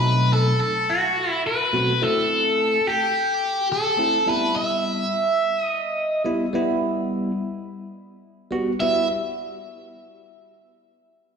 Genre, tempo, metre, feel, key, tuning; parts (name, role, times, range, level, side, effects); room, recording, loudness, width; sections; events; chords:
blues; 106 BPM; 4/4; straight; E harmonic minor; A4 = 440 Hz
overdriven electric guitar; melody; 0.0-9.1 s; F#4 to E5; -21 LUFS; equal; phaser, slapback echo
barky tine electric piano; accompaniment; 0.0-9.1 s; B2 to F#4; -24 LUFS; equal; phaser, slapback echo
wet lush hall reverb, RT60 3.1 s; live gig heard through the venue's PA, recital hall reverb; -20 LUFS; side -6 dB against mid
0.0-8.8 A section; 8.8-11.1 B section
0.0 B7b9; 2.0 Am; 4.3 Em